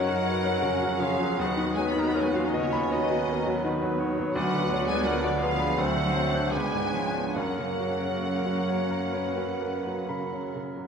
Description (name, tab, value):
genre	classical, romantic movement for piano and orchestra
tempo	60-87 BPM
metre	4/4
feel	rubato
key	F# major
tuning	A4 = 440 Hz
part	clear baby grand piano	melody	0.0-10.9 s	C#2 to C#6	-29 LUFS	left 2 dB	none
part	rich studio violin section	melody	0.0-10.5 s	C#5 to B5	-36 LUFS	left 3 dB	none
part	mellow clarinet	second line	0.0-10.5 s	C#4 to B4	-38 LUFS	left 1 dB	none
part	mellow cor anglais	second line	0.0-10.9 s	A#4 to E5	-37 LUFS	right 4 dB	none
part	mellow hollow flute section	second line	0.0-10.5 s	E#4 to D#5	-36 LUFS	left 1 dB	none
part	rich studio violin section	second line	0.0-10.5 s	C#5 to B5	-37 LUFS	left 1 dB	none
part	warm bassoon	accompaniment	0.0-10.6 s	A#3 to D#4	-35 LUFS	right 3 dB	none
part	warm studio viola section	accompaniment	0.0-10.8 s	A#3 to F#4	-36 LUFS	right 3 dB	none
part	mellow French horn section	sustained chords	0.0-10.6 s	A#3 to F#4	-38 LUFS	left 2 dB	none
part	rich studio cello section	bass	0.0-10.6 s	C#3 to B3	-35 LUFS	right 2 dB	none
part	rich studio double bass section	bass	0.0-10.8 s	C#2 to F#2	-37 LUFS	right 4 dB	none
room	wet concert hall reverb, RT60 1.9 s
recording	minimal, uncompressed stereo recording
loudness	-24 LUFS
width	side -6 dB against mid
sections	0.0-10.9 A section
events	none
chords	0.0 F#; 1.4 B/D#; 4.3 Bm/D; 5.8 D7; 6.5 C#7b9; 7.4 F#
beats	0.63 | 1.39 2.16 2.92 3.65 | 4.34 5.04 5.78 6.52 | 7.35 8.23 9.13 10.10